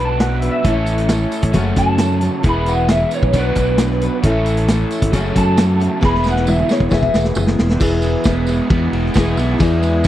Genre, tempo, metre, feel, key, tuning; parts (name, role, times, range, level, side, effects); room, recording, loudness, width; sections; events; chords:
folk rock and heartland rock; 134 BPM; 4/4; straight; A4 = 440 Hz
electric guitar through a small old amp; melody; 0.0-7.8 s; B4 to B5; -20 LUFS; equal; ensemble chorus
picked steel-string acoustic guitar; accompaniment; 0.0-10.1 s; F#2 to B4; -22 LUFS; left 4 dB
bright tonewheel organ; sustained chords; 0.0-10.1 s; G#3 to D5; -31 LUFS; equal
crunchy overdriven guitar; riff; 0.0-10.1 s; E2 to A4; -22 LUFS; right 2 dB
fingered electric bass; bass; 0.0-10.1 s; E1 to F#2; -18 LUFS; equal
vintage drum kit; drums; 0.2-10.1 s; crash cymbal, hi-hat, kick drum, ride cymbal, snare drum, toms; -18 LUFS; equal
overdriven reed electric piano; accompaniment; 0.6-10.1 s; D4 to D5; -30 LUFS; right 4 dB; phaser
tambourine; percussion; 0.6-10.1 s; -36 LUFS; right 8 dB
little or no reverb; dry, close 1970s-style studio recording; -14 LUFS; side -13 dB against mid
0.0-7.8 A section; 7.8-10.1 B section
clean electric guitar solo 0.0-7.8; drum fill 6.0-7.8
0.0 Bm; 0.6 A; 1.5 F#m; 2.4 E; 3.3 Bm; 4.2 A; 5.1 F#m; 6.0 E